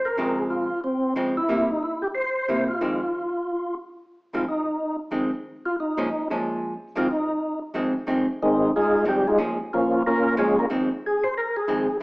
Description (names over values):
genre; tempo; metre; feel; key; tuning
jazz; 183 BPM; 4/4; swing 64% on 8ths; F minor; A4 = 440 Hz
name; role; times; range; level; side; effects
percussive tonewheel organ; melody; 0.0-12.0 s; Eb3 to C5; -22 LUFS; equal; slow rotary speaker, overdrive, chorus vibrato
archtop guitar, miked and amplified; accompaniment; 0.2-12.0 s; F2 to E4; -26 LUFS; equal; none
room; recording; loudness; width
wet large studio reverb, RT60 1.1 s; band playing live in one room, small speaker sound; -22 LUFS; side -24 dB against mid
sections
0.0-4.1 A section; 4.1-12.0 B section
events
tonewheel organ solo 4.1-12.0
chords
0.0 Dbmaj7; 1.5 C7; 2.8 Fm7; 5.4 Bbm7; 6.7 Fm7; 9.4 Bbm7; 10.7 Fm7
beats
| 0.18 0.50 0.83 1.16 | 1.49 1.81 2.14 2.47 | 2.80 3.13 3.46 3.79 | 4.11 4.44 4.77 5.10 | 5.43 5.76 6.09 6.42 | 6.75 7.07 7.40 7.73 | 8.06 8.39 8.72 9.05 | 9.38 9.70 10.03 10.36 | 10.69 11.02 11.34 11.67 | 12.00